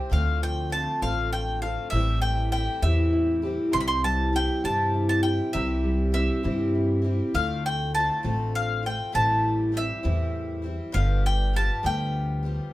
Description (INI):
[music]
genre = folk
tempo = 66 BPM (dotted quarters)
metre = 6/8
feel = straight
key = C major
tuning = A4 = 440 Hz
[part]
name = bowl-back mandolin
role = melody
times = 0.0-12.7 s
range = E5 to C6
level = -28 LUFS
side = equal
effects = none
[part]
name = picked twelve-string acoustic guitar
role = accompaniment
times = 0.0-12.7 s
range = G2 to G4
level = -29 LUFS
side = left 1 dB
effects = none
[part]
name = fingerpicked steel-string acoustic guitar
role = accompaniment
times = 0.1-7.3 s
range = A2 to A4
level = -31 LUFS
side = right 1 dB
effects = none
[part]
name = upright bass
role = bass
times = 0.1-12.6 s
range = G1 to G2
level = -26 LUFS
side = equal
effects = none
[sound]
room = moderate studio ambience, RT60 0.5 s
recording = band playing live in one room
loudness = -22 LUFS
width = side -16 dB against mid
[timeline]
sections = 0.1-12.7 A section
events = none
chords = 0.1 Dm7; 1.9 Am7; 3.7 C; 7.3 Dm7; 9.2 Am7; 11.0 G7